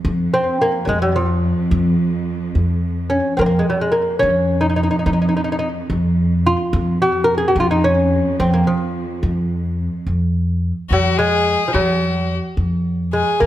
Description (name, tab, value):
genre	Persian modal ensemble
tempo	72 BPM (dotted quarters)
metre	6/8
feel	straight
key	F dastgah shur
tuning	A4 = 439 Hz
part	upright bass	bass	0.0-13.5 s	F2	-18 LUFS	equal	none
part	clear studio cello section	drone	0.0-10.1 s	F2	-25 LUFS	right 2 dB	none
part	lute	melody	0.3-13.5 s	F3 to Bb4	-18 LUFS	equal	slapback echo
part	rich violin	second line	10.9-13.5 s	Gb4+45c to Bb4	-20 LUFS	left 5 dB	none
room	light reverb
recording	none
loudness	-16 LUFS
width	side -13 dB against mid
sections	0.0-10.1 A section; 10.1-13.5 B section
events	none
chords	none